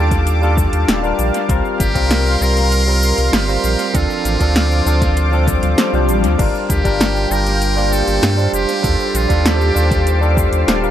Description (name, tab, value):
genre	sunset chillout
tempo	98 BPM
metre	4/4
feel	straight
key	G minor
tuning	A4 = 442 Hz
part	trumpet with metal mute	melody	0.0-10.4 s	F4 to Bb4	-23 LUFS	equal	dub echo, shimmer reverb
part	barky tine electric piano	accompaniment	0.0-10.9 s	F3 to C5	-20 LUFS	moving between left 6 dB and right 7 dB	auto-pan, dub echo, shimmer reverb
part	lush unison pad	sustained chords	0.0-10.9 s	G4 to D6	-22 LUFS	equal	chorus, shimmer reverb
part	warm sub bass	bass	0.0-10.9 s	Eb1 to G2	-16 LUFS	equal	none
part	deep house drum kit	drums	0.1-10.9 s	cabasa, crash cymbal, hi-hat, snare drum	-21 LUFS	equal	overdrive, studio reverb, dub echo
part	electronic kick drum	drums	0.1-10.5 s	none	-20 LUFS	equal	overdrive, studio reverb
part	swell	sound effects	5.4-6.4 s	none	-24 LUFS	equal	none
part	wind-like tuned noise texture	texture	7.5-10.9 s	C5 to C6	-27 LUFS	right 2 dB	built-in reverb, shimmer reverb
room	light reverb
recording	echo-heavy mix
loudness	-13 LUFS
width	side -11 dB against mid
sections	0.0-10.9 A section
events	swell 5.4-6.4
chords	0.0 Ebmaj9#11; 1.5 C7sus4; 3.9 Dm7; 6.4 Gm7; 8.8 Ebmaj9#11